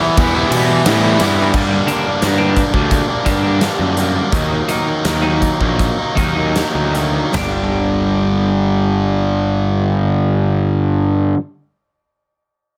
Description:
quiet-loud alternative rock; 74-88 BPM; 4/4; straight; G harmonic minor; A4 = 440 Hz
distorted electric guitar; riff; 0.0-11.4 s; G2 to E4; -19 LUFS; equal; overdrive
thick fuzz guitar; riff; 0.0-1.5 s; E3 to E4; -21 LUFS; equal; distortion
fuzz picked electric bass; bass; 0.2-11.3 s; G1 to B2; -21 LUFS; equal; overdrive
big rock drum kit; drums; 0.2-7.5 s; crash cymbal, hi-hat, kick drum, ride cymbal, snare drum, toms; -23 LUFS; equal
twelve-string electric guitar; arpeggios; 1.7-11.4 s; G2 to Eb4; -25 LUFS; equal
light reverb; -16 LUFS; mono
0.0-1.5 A section; 1.5-7.3 B section; 7.3-10.6 C section
slowing down 1.5-7.3
0.0 Em; 1.5 Gm; 4.3 Ebm; 7.3 Gm

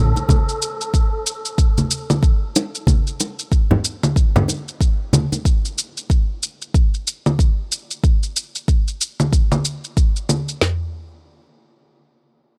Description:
organic downtempo; 93 BPM; 4/4; swing 59% on 16ths
shaker and congas; drums; 0.2-10.6 s; -23 LUFS; equal
congas and bongos; percussion; 0.2-5.4 s; -22 LUFS; equal
afro-pop drum kit; drums; 0.3-10.8 s; kick drum, snare drum, toms; -18 LUFS; equal
digital ambience; -19 LUFS; mono
0.0-10.6 A section; 10.6-12.6 B section

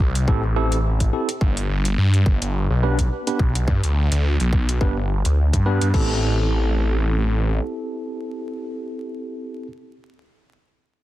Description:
glitch hop; 106 BPM; 4/4; swing 56% on 16ths; A minor; A4 = 435 Hz
phased detuned saw bass; bass; 0.0-7.6 s; G1 to G2; -19 LUFS; equal; phaser, tube saturation
drum and bass drum kit; drums; 0.2-6.1 s; crash cymbal, hi-hat; -30 LUFS; left 2 dB
bright tine electric piano; stabs; 0.3-9.7 s; B3 to B4; -26 LUFS; right 1 dB; medium stereo tremolo, sidechain pumping, digital delay
electronic kick drum; drums; 0.3-6.1 s; -20 LUFS; equal
little or no reverb; dense, heavily limited modern master, vinyl crackle; -18 LUFS; side -15 dB against mid
0.0-5.9 A section; 5.9-8.2 B section
0.0 Am7; 1.4 G; 5.9 Am7

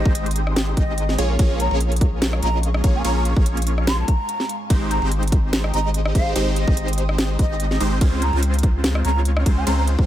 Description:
future bass; 145 BPM; 4/4; swing 54% on 16ths, half-time; Ab major; A4 = 439 Hz
breathy mellow jazz flute; melody; 0.0-9.8 s; Eb5 to C6; -29 LUFS; equal; sidechain pumping, tape echo
ethereal airy pad; sustained chords; 0.0-10.1 s; Ab3 to Eb6; -34 LUFS; right 1 dB; ensemble chorus, built-in reverb, sidechain pumping
supersaw stab; riff; 0.0-10.1 s; Ab3 to Eb5; -25 LUFS; right 1 dB; phaser, sidechain pumping, tape echo
saturated sub bass; bass; 0.0-10.1 s; Ab1 to Db2; -21 LUFS; equal; sidechain pumping
electronic kick drum; drums; 0.1-10.1 s; -17 LUFS; equal
trap drum kit; drums; 0.1-10.0 s; hi-hat, ride cymbal, rim click, snare drum; -26 LUFS; equal
digital ambience; -17 LUFS; side -12 dB against mid
0.0-10.1 A section
0.0 Abmaj7; 1.2 Bbm7; 4.7 Abmaj7; 8.0 Dbmaj7

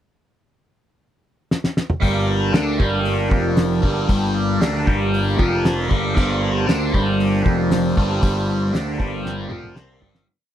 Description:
psychedelic rock; 116 BPM; 4/4; straight; G minor; A4 = 440 Hz
cloth-damped thuddy drum kit; drums; 1.5-10.3 s; crash cymbal, hi-hat, kick drum, snare drum, toms; -19 LUFS; equal
pedal harmonium; sustained chords; 2.0-10.2 s; Bb3 to C5; -28 LUFS; right 4 dB
biting overdriven guitar; riff; 2.0-10.3 s; F2 to D4; -20 LUFS; equal; phaser
fuzz picked electric bass; bass; 2.0-10.2 s; F1 to D2; -23 LUFS; equal; overdrive
small room reverb; -17 LUFS; side -11 dB against mid
0.0-2.0 pickup bar; 2.0-10.3 riff
drum fill 1.5-2.0, 9.2-10.3; fade-out 8.2-10.3
0.0 N.C.; 2.0 Gm

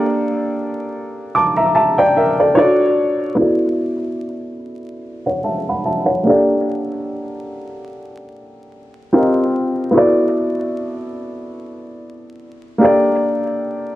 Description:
hip hop; 73 BPM; 4/4; swing 55% on 16ths; D major; A4 = 440 Hz
dark upright piano; solo; 0.0-14.0 s; Bb3 to D6; -15 LUFS; equal; cassette tape, low-pass filter, analog delay
wet studio reverb, RT60 0.6 s; vinyl crackle; -14 LUFS; side -14 dB against mid
0.0-3.4 A section; 3.4-14.0 B section
filter sweep on upright piano 3.4-14.0
0.0 Gmadd9; 2.6 Dmaj7; 3.4 D69; 6.3 Gmadd9; 9.1 Eb69; 10.0 D69; 12.8 Gmadd9

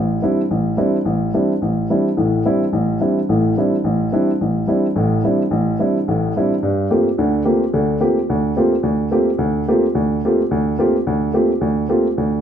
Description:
jazz; 216 BPM; 4/4; swing 59% on 8ths; G minor from 6.6 s; A4 = 440 Hz
dark upright piano; solo; 0.0-12.4 s; A1 to G4; -15 LUFS; equal
moderate large studio reverb, RT60 1.1 s; band playing live in one room; -15 LUFS; side -8 dB against mid
0.0-6.6 A section; 6.6-12.4 B section
0.0 D9sus4; 6.6 Gm11

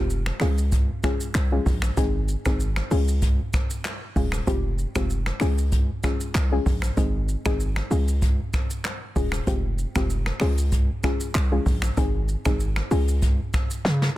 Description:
afrobeats; 96 BPM; 4/4; swing 55% on 16ths; A4 = 440 Hz
soft round pluck; accompaniment; 0.0-13.1 s; Ab3 to Ab4; -29 LUFS; left 2 dB; chorus
hard-hitting 808-style bass; bass; 0.0-14.1 s; Eb1 to Db3; -23 LUFS; equal
jazz brush drum kit; drums; 0.1-14.2 s; finger snaps, handclaps, hi-hat, kick drum, rim click, shaker, snare drum; -25 LUFS; equal; soft clipping on snare
little or no reverb; dense, heavily limited modern master; -21 LUFS; side -16 dB against mid
0.0-14.2 A section
drum fill 13.8-14.2
0.4 Db; 2.0 Ab; 2.9 Db; 4.5 Fmadd9; 5.4 Db; 7.0 Ab; 7.9 Db; 9.5 Fmadd9; 10.4 Db; 12.0 Ab; 12.9 Db

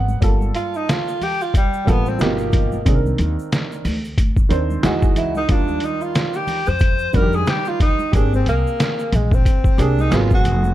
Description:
hip hop, jazz-hop; 91 BPM; 4/4; swing 58% on 16ths; G phrygian; A4 = 440 Hz
warm upright piano; accompaniment; 0.0-10.7 s; B2 to Gb5; -24 LUFS; right 3 dB
upright bass; bass; 0.0-10.7 s; F1 to F2; -20 LUFS; equal
congas and egg shaker; percussion; 0.1-10.7 s; -33 LUFS; equal
trip hop sampler-style drum kit; drums; 0.2-10.6 s; hi-hat, kick drum, snare drum; -18 LUFS; equal
breathy tenor saxophone; melody; 0.6-10.7 s; G3 to C5; -22 LUFS; equal
studio ambience; dark, warm production; -16 LUFS; side -14 dB against mid
0.2-10.7 A section
tenor saxophone solo 0.2-10.7
0.2 Gm9; 2.2 G7alt; 2.9 Cm9; 4.8 Emaj9; 5.5 Ebmaj9; 8.1 Abmaj9; 10.1 Abm9

